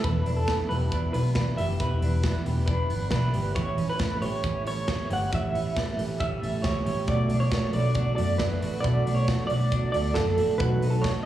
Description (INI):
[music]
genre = jangly indie pop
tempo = 136 BPM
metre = 4/4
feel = straight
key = unclear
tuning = A4 = 440 Hz
[part]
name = electric guitar through a small old amp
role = melody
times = 0.0-11.3 s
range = A4 to F#5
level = -30 LUFS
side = right 2 dB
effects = tremolo, slapback echo, digital delay
[part]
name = picked steel-string acoustic guitar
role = accompaniment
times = 0.0-11.3 s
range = E2 to F#4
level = -34 LUFS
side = right 5 dB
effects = slapback echo
[part]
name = twelve-string electric guitar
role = arpeggios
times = 0.0-11.3 s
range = E3 to G4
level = -33 LUFS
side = left 1 dB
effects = slapback echo, digital delay
[part]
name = vintage muted fingered electric bass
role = bass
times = 0.0-11.1 s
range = E1 to F#2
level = -28 LUFS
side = equal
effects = none
[part]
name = big rock drum kit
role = drums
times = 0.0-11.1 s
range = hi-hat, kick drum, snare drum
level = -30 LUFS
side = equal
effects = none
[sound]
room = moderate lush hall reverb, RT60 2.2 s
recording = live gig heard through the venue's PA, club reverb, studio ambience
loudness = -23 LUFS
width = side -12 dB against mid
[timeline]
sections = 0.0-11.3 A section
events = none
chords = 0.0 Em7; 3.6 A7; 7.1 Bm7; 10.6 B7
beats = | 0.04 0.48 0.92 1.36 | 1.80 2.24 2.68 3.12 | 3.56 4.00 4.44 4.88 | 5.32 5.76 6.20 6.64 | 7.08 7.52 7.96 8.40 | 8.84 9.28 9.72 10.16 | 10.60 11.04